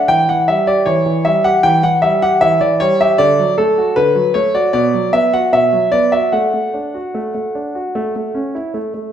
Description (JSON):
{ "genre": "classical-period piano sonatina", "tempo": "76 BPM", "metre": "4/4", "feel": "rubato", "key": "D major", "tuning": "A4 = 436 Hz", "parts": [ { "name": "clear concert grand piano", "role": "solo", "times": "0.0-9.1 s", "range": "B2 to G5", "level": "-12 LUFS", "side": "equal", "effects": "none" } ], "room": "wet recital hall reverb, RT60 1.4 s", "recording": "minimal, uncompressed stereo recording", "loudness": "-12 LUFS", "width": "side -9 dB against mid", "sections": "0.0-9.1 A section", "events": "none", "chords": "0.1 Em13; 3.2 D; 4.7 B5; 6.3 D/A; 8.0 A", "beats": "| 0.08 0.86 1.64 2.42 | 3.19 3.96 4.73 5.52 | 6.33 7.14 7.96 8.75" }